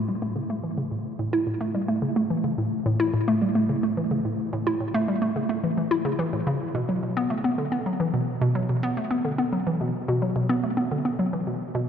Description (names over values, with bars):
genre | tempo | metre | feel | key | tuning
ambient | 108 BPM | 4/4 | straight | unclear | A4 = 440 Hz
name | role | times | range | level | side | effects
hollow square pluck | solo | 0.0-11.9 s | A2 to E4 | -23 LUFS | equal | chorus, tape echo
room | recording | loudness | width
wet cathedral reverb, RT60 5.2 s | in a vast, echoing space | -23 LUFS | side -8 dB against mid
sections
0.0-11.9 A section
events
none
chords
none